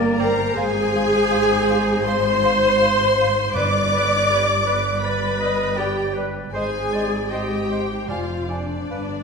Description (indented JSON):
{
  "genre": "classical, slow romantic movement for symphony orchestra",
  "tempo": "80 BPM",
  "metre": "4/4",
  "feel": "rubato",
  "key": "unclear",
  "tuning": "A4 = 440 Hz",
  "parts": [
    { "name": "rich studio violin section", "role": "melody", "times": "0.0-9.2 s", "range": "Bb4 to D6", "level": "-30 LUFS", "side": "left 2 dB", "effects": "none" },
    { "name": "clear clarinet", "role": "second line", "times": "0.0-9.2 s", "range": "G4 to Eb5", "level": "-29 LUFS", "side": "left 3 dB", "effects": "none" },
    { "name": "rich studio violin section", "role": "second line", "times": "0.0-9.2 s", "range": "Bb4 to D6", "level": "-29 LUFS", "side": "left 1 dB", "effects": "none" },
    { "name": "warm studio viola section", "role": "accompaniment", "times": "0.0-9.2 s", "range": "Bb3 to D5", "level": "-22 LUFS", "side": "equal", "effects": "none" },
    { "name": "dark French horn section", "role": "sustained chords", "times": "0.0-9.2 s", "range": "Bb3 to D5", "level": "-25 LUFS", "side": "left 2 dB", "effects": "none" },
    { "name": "rich studio cello section", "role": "bass", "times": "0.0-9.2 s", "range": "F2 to Ab2", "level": "-28 LUFS", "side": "right 1 dB", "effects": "none" },
    { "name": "rich studio double bass section", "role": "bass", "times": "0.0-9.2 s", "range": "F1 to Ab1", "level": "-29 LUFS", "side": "right 4 dB", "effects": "none" },
    { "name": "timpani", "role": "percussion", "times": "0.0-4.6 s", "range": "G2", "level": "-32 LUFS", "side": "equal", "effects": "none" },
    { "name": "mellow hollow concert flute", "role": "second line", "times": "0.2-9.0 s", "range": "D5 to Ab5", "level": "-33 LUFS", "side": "left 2 dB", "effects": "none" },
    { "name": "warm cor anglais", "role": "second line", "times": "0.2-9.1 s", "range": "B4 to D5", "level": "-33 LUFS", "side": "right 4 dB", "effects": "none" }
  ],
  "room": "wet scoring stage reverb, RT60 1.7 s",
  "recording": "none",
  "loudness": "-18 LUFS",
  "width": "side -5 dB against mid",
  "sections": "0.0-9.2 A section",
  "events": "none",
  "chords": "0.0 Gm; 0.6 Fm/Ab; 3.5 G; 6.5 Ab; 8.1 Ddim/F",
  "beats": "| 0.55 1.30 2.06 2.81 | 3.54 4.29 5.03 5.79 | 6.54 7.31 8.10 8.91"
}